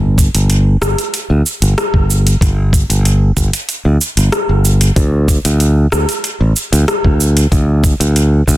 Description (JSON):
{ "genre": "sunset chillout", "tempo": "94 BPM", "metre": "4/4", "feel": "straight", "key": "unclear", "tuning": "A4 = 439 Hz", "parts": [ { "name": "modern bright fingered electric bass", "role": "bass", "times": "0.0-8.6 s", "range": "G1 to D2", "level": "-11 LUFS", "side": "equal", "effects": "tube saturation" }, { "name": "deep house drum kit", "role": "drums", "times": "0.2-8.6 s", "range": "cabasa, hi-hat, rim click", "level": "-17 LUFS", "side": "equal", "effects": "overdrive" }, { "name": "electronic kick drum", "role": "drums", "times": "0.2-8.6 s", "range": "none", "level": "-13 LUFS", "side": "equal", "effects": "none" } ], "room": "little or no reverb", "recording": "dense, heavily limited modern master", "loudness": "-10 LUFS", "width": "side -16 dB against mid", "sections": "0.0-8.6 A section", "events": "none", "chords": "none" }